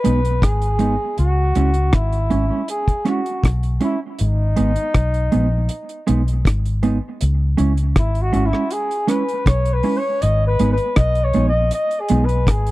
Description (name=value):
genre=roots reggae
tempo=80 BPM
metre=4/4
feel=straight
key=G# minor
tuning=A4 = 440 Hz
part: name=mellow flugelhorn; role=melody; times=0.0-12.7 s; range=D#4 to D#5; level=-22 LUFS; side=left 1 dB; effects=tape echo
part: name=mellow electric guitar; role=accompaniment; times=0.0-12.3 s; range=G#3 to E4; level=-21 LUFS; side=right 3 dB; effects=spring reverb, tape echo
part: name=deep reggae drum kit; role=drums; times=0.0-12.7 s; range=hi-hat, kick drum, rim click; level=-18 LUFS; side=equal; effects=none
part: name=vintage muted fingered electric bass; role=bass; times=0.1-12.7 s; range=G#1 to C#2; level=-18 LUFS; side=equal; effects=none
room=light reverb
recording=dry, close 1970s-style studio recording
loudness=-16 LUFS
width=side -18 dB against mid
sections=0.0-12.7 A section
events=flugelhorn solo 0.0-12.7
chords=0.0 G#m; 1.2 C#m; 4.2 G#m; 7.2 C#m; 10.2 G#m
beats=0.43 | 1.18 1.93 2.69 3.44 | 4.19 4.95 5.70 6.45 | 7.20 7.96 8.71 9.46 | 10.22 10.97 11.72 12.47